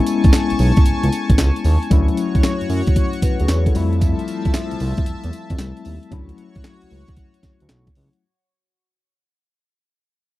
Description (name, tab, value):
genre	R&B, new jack swing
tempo	114 BPM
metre	4/4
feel	swing 67% on 16ths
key	unclear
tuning	A4 = 439 Hz
part	tine electric piano	accompaniment	0.0-8.2 s	F#3 to C#5	-23 LUFS	left 6 dB	medium tremolo
part	chorused pulse-width pad	sustained chords	0.0-8.2 s	F3 to C#6	-28 LUFS	left 1 dB	none
part	breakbeat sampler-style drum kit	drums	0.1-8.2 s	handclaps, hi-hat, kick drum, snare drum, tambourine	-16 LUFS	right 1 dB	none
part	smooth synth bass	bass	0.2-8.1 s	A1 to F#2	-19 LUFS	right 1 dB	none
room	little or no reverb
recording	dry, close 1970s-style studio recording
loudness	-15 LUFS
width	side -16 dB against mid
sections	0.0-8.2 A section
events	fade-out 0.0-8.2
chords	0.0 Amaj7; 1.9 Dmaj7; 3.8 Fmaj7; 6.1 Dmaj7